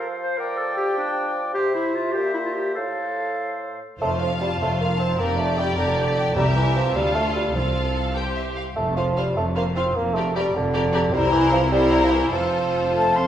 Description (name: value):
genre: quick classical-period movement for symphony orchestra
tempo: 101 BPM (dotted quarters)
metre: 6/8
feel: rubato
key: F major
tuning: A4 = 440 Hz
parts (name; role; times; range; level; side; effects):
- clear clarinet; second line; 0.0-3.8 s; D4 to C5; -25 LUFS; left 1 dB; none
- silver concert flute; second line; 0.0-3.8, 13.0-13.3 s; E5 to C6; -27 LUFS; left 2 dB; none
- warm oboe; second line; 0.0-3.8 s; C5 to D5; -31 LUFS; right 1 dB; none
- warm bassoon; accompaniment; 0.0-13.3 s; A2 to C4; -24 LUFS; right 1 dB; none
- rich studio violin section; melody; 4.0-13.3 s; C5 to G5; -32 LUFS; left 2 dB; none
- rich studio violin section; second line; 4.0-13.3 s; A4 to A5; -29 LUFS; left 3 dB; none
- rich studio viola section; accompaniment; 4.0-13.3 s; E4 to G4; -28 LUFS; equal; none
- clear studio cello section; bass; 4.0-13.3 s; C2 to F2; -30 LUFS; right 1 dB; none
- warm studio double bass section; bass; 4.0-13.3 s; F1 to D2; -27 LUFS; right 1 dB; none
- timpani; percussion; 4.0-11.7 s; F2 to C3; -29 LUFS; equal; none
- warm French horn section; sustained chords; 13.0-13.3 s; A3 to C4; -25 LUFS; left 2 dB; none
room: wet stone room reverb, RT60 1.3 s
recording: heard from further back in the room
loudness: -20 LUFS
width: side -10 dB against mid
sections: 0.0-4.0 A section; 4.0-13.3 A section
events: none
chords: 0.4 G5/F; 1.6 C; 2.2 C7/Bb; 2.8 F/A; 4.0 F; 5.2 Gm/F; 6.4 C7; 7.0 Dm; 7.5 F/C; 8.2 C5; 8.8 F5; 10.0 Gm/F; 11.1 C7; 12.3 F